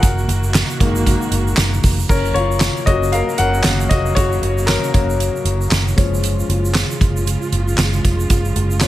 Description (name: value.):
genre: piano-driven pop.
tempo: 116 BPM.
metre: 4/4.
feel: swing 56% on 16ths.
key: F# major.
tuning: A4 = 441 Hz.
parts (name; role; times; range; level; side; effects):
clear baby grand piano; accompaniment; 0.0-8.9 s; D#3 to F#5; -21 LUFS; left 4 dB; none.
warm studio string section; sustained chords; 0.0-8.9 s; C#3 to F#4; -25 LUFS; right 2 dB; none.
vintage muted fingered electric bass; bass; 0.0-8.9 s; E#1 to F#1; -19 LUFS; equal; none.
soft-mallet drum kit; drums; 0.0-8.9 s; crash cymbal, handclaps, hi-hat, kick drum, snare drum; -18 LUFS; right 1 dB; none.
egg shaker; percussion; 0.0-8.9 s; none; -32 LUFS; right 5 dB; none.
room: light reverb.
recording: none.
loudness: -14 LUFS.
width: side -14 dB against mid.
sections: 0.0-2.1 A section; 2.1-8.9 B section.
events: grand piano solo 0.0-2.1, 2.1-8.9.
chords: 0.0 F#6; 2.1 F#; 6.0 C#.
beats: | 0.03 0.55 1.07 1.58 | 2.10 2.62 3.13 3.65 | 4.17 4.68 5.20 5.72 | 6.23 6.75 7.27 7.78 | 8.30 8.82.